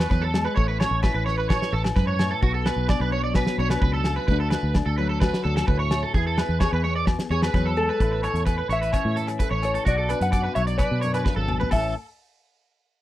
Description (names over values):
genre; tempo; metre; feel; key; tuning
highlife guitar band; 129 BPM; 4/4; straight; A major; A4 = 440 Hz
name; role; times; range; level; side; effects
nylon-string guitar; accompaniment; 0.0-11.9 s; F#2 to B4; -30 LUFS; left 6 dB; none
electric guitar at the edge of break-up; arpeggios; 0.0-11.9 s; F#4 to D5; -28 LUFS; right 4 dB; ensemble chorus, slapback echo
fingered electric bass; bass; 0.0-11.9 s; G#1 to B2; -26 LUFS; equal; none
damped 70s drum kit; drums; 0.0-11.8 s; hi-hat, kick drum, rim click, snare drum, toms; -24 LUFS; equal; none
agogo bells; percussion; 0.0-11.8 s; none; -34 LUFS; left 7 dB; none
clean electric guitar; melody; 7.8-11.9 s; A4 to F#5; -26 LUFS; left 2 dB; none
room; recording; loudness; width
little or no reverb; dry, close 1970s-style studio recording; -21 LUFS; side -14 dB against mid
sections
0.0-8.0 A section; 8.0-11.7 B section; 11.7-13.0 C section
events
drum fill 11.3-11.7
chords
0.0 E; 0.6 Aadd9; 2.4 Bm; 4.3 D; 6.1 E; 8.0 Aadd9; 9.9 Bm; 11.7 A